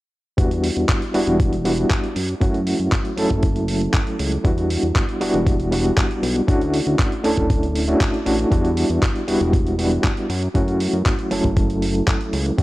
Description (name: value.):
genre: nu-disco, nu disco.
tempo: 118 BPM.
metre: 4/4.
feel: straight.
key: E dorian.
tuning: A4 = 441 Hz.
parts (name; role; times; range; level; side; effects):
overdriven reed electric piano; accompaniment; 0.4-12.6 s; F#3 to A4; -21 LUFS; equal; fast tremolo, sidechain pumping, low-pass filter, tape echo.
fat analog bass; bass; 0.4-12.6 s; D1 to F#2; -23 LUFS; equal; sidechain pumping.
dusty soul sampler-style drum kit; drums; 0.4-12.6 s; handclaps, hi-hat; -27 LUFS; equal; small room ambience.
electronic kick drum; drums; 0.4-12.6 s; none; -19 LUFS; equal; small room ambience.
room: little or no reverb.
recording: dry, gritty hardware recording.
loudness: -17 LUFS.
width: side -17 dB against mid.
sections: 0.4-12.6 A section.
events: none.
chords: 0.4 Em7; 2.2 F#m7; 4.5 Em7; 6.5 Dmaj9; 8.5 Em7; 10.3 F#m7.